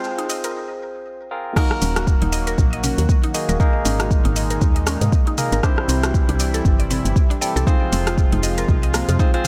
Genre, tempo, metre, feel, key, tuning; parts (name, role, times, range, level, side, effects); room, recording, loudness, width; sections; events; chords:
afro house; 118 BPM; 4/4; swing 57% on 16ths; Eb dorian; A4 = 440 Hz
warm analog pad; sustained chords; 0.0-9.5 s; Bb2 to C5; -31 LUFS; equal; chorus, tremolo, sidechain pumping
barky tine electric piano; stabs; 0.0-9.5 s; Bb3 to C5; -28 LUFS; equal; phaser, sidechain pumping, digital delay
afro-pop drum kit; drums; 0.0-9.5 s; crash cymbal, hi-hat, rim click, shaker, toms; -28 LUFS; equal; high-pass filter on perc, high-pass filter on hats, high-pass filter on snare, high-pass filter on cymbals, high-pass filter on toms
mallet-like synth pluck; arpeggios; 0.2-9.5 s; Bb3 to Eb5; -31 LUFS; equal; chorus, phaser, sidechain pumping, digital delay
electronic kick drum; drums; 1.6-9.3 s; -19 LUFS; equal
woody FM bass; bass; 1.8-9.2 s; Eb1 to Ab2; -24 LUFS; equal; sidechain pumping
light reverb, digital ambience; high-pass filter; -19 LUFS; mono
0.0-1.6 A section; 1.6-9.5 B section
build-up 0.0-1.6; filter sweep on analog synth pad 0.0-1.6; filter sweep 0.0-1.6; break 0.5-1.6; drop 1.6-9.5
0.0 Fm; 1.6 Ebm; 3.6 Absus2; 5.6 C; 7.7 Fm